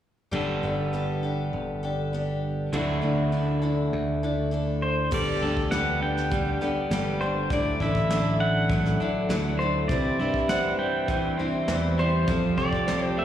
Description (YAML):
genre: folk rock and heartland rock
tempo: 100 BPM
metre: 4/4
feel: straight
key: G major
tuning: A4 = 440 Hz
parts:
  - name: picked steel-string acoustic guitar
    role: accompaniment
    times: 0.3-13.2 s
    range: C3 to C5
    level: -30 LUFS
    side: left 4 dB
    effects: slapback echo
  - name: electric guitar at the edge of break-up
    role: riff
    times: 0.3-13.2 s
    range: C3 to A4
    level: -29 LUFS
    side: right 2 dB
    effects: slapback echo
  - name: modern bright picked electric bass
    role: bass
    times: 0.3-13.2 s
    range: G1 to G2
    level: -28 LUFS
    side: right 1 dB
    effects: none
  - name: pedal steel guitar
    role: melody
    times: 4.8-13.2 s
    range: C5 to G5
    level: -29 LUFS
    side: equal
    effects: slapback echo
  - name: soft brush drum kit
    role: drums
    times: 5.1-13.0 s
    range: crash cymbal, hi-hat, kick drum, snare drum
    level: -32 LUFS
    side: equal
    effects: none
room: light reverb, studio reverb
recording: live gig heard through the venue's PA, recital hall reverb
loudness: -23 LUFS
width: side -10 dB against mid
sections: 0.3-5.1 A section; 5.1-13.2 B section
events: none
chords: 0.3 Gadd9; 2.7 Dadd9; 5.1 Gadd9; 7.5 Dadd9; 9.9 C; 12.3 Fadd9